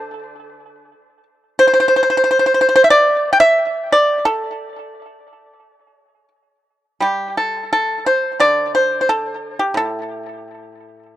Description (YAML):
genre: chinese traditional, Chinese solo plucked strings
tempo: 88 BPM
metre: 4/4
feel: uneven beats, rubato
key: A yu mode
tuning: A4 = 442 Hz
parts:
  - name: pipa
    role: solo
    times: 0.0-11.2 s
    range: A2 to G5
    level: -13 LUFS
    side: equal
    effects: tape echo
room: small room reverb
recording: dry, close 1970s-style studio recording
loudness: -13 LUFS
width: side -13 dB against mid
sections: 0.0-7.0 A section; 7.0-11.2 B section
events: none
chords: none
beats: 0.29 0.94 | 1.60 2.26 2.92 3.58 | 4.26 4.94 5.62 6.32 | 7.03 7.72 8.40 9.08 | 9.75 10.40 11.05